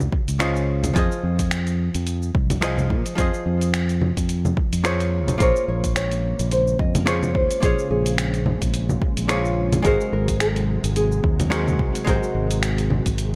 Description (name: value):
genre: sunset chillout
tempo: 108 BPM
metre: 4/4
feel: swing 56% on 16ths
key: unclear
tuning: A4 = 439 Hz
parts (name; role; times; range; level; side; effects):
- archtop guitar, miked and amplified; accompaniment; 0.0-13.4 s; Db3 to Eb5; -29 LUFS; equal; delay
- fingered electric bass; bass; 0.0-13.4 s; Ab1 to Bb2; -25 LUFS; equal; none
- dusty soul sampler-style drum kit; drums; 0.0-13.3 s; congas, finger snaps, hi-hat, shaker; -29 LUFS; equal; none
- electronic kick drum; drums; 0.1-13.2 s; none; -25 LUFS; equal; overdrive
- nylon-string guitar; melody; 5.4-13.4 s; F4 to Eb5; -28 LUFS; equal; delay
- soft string machine; sustained chords; 5.6-13.4 s; C3 to Bb3; -33 LUFS; equal; ensemble chorus
room: light reverb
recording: none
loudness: -21 LUFS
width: mono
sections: 0.0-13.4 A section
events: none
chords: 0.0 Dbmaj7; 1.0 Fm7; 5.1 Bbm9; 9.8 Ab9